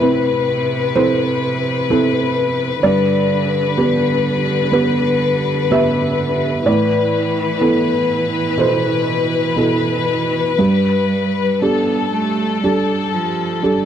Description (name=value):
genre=neoclassical piano and strings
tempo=58-64 BPM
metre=4/4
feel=rubato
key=A minor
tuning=A4 = 436 Hz
part: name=clear studio violin section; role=melody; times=0.0-13.9 s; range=A4 to B4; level=-19 LUFS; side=left 7 dB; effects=none
part: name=clear cello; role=second line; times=0.0-13.9 s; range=C3 to B3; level=-22 LUFS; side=right 4 dB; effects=none
part: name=felt-muted upright piano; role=accompaniment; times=0.0-13.9 s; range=G2 to E5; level=-18 LUFS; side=right 3 dB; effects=none
room=little or no reverb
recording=dry, close 1970s-style studio recording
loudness=-14 LUFS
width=side -9 dB against mid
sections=0.0-13.9 A section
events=none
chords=0.0 Amadd9; 2.8 G; 6.7 Amadd9; 10.6 Gadd9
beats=0.01 0.95 1.90 | 2.84 3.78 4.73 5.72 | 6.67 7.62 8.58 9.57 | 10.59 11.62 12.64 13.65